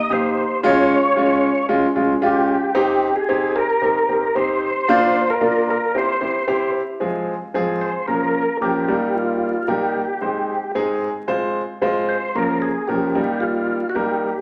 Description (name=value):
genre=soul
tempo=112 BPM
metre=4/4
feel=straight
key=F minor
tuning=A4 = 440 Hz
part: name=percussive tonewheel organ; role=melody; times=0.0-14.4 s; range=F4 to Eb5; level=-23 LUFS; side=equal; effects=chorus vibrato, slow rotary speaker
part: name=warm concert grand piano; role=accompaniment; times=0.1-14.3 s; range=F3 to C5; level=-22 LUFS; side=equal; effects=none
room=wet large studio reverb, RT60 1.4 s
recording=vinyl crackle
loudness=-20 LUFS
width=mono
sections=0.0-7.0 A section; 7.0-14.4 B section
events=none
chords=0.0 Eb; 0.6 Db; 2.8 Cm; 4.9 Bb; 5.9 C; 7.0 Fm; 8.1 Bbm; 8.9 Eb; 10.2 Ab; 11.3 Fm; 12.4 Bbm; 13.2 Eb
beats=0.09 | 0.62 1.16 1.69 2.22 | 2.75 3.28 3.81 4.35 | 4.88 5.41 5.94 6.47 | 7.01 7.54 8.08 8.61 | 9.14 9.68 10.21 10.75 | 11.29 11.82 12.36 12.89 | 13.43 13.96